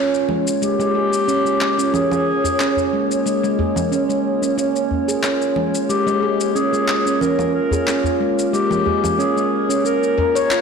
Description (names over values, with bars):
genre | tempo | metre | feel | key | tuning
organic downtempo | 91 BPM | 4/4 | swing 53% on 16ths | Bb dorian | A4 = 440 Hz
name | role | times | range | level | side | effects
warbly tape-like pad | sustained chords | 0.0-10.6 s | Bb3 to Db5 | -24 LUFS | left 2 dB | chorus, built-in reverb
handpan | arpeggios | 0.0-10.6 s | Ab3 to Db5 | -19 LUFS | right 2 dB | low-pass filter, digital delay
electronic shaker, congas and handclaps | drums | 0.1-10.6 s | none | -25 LUFS | equal | studio reverb
dark clarinet | melody | 0.6-10.5 s | G4 to Bb4 | -21 LUFS | left 2 dB | ping-pong delay
udu | percussion | 2.4-10.3 s | none | -26 LUFS | left 2 dB | none
room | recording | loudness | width
wet lush hall reverb, RT60 2.2 s | blown-out, overdriven recording, overdrive | -16 LUFS | side -6 dB against mid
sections
0.0-10.6 A section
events
none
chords
0.0 Bbm7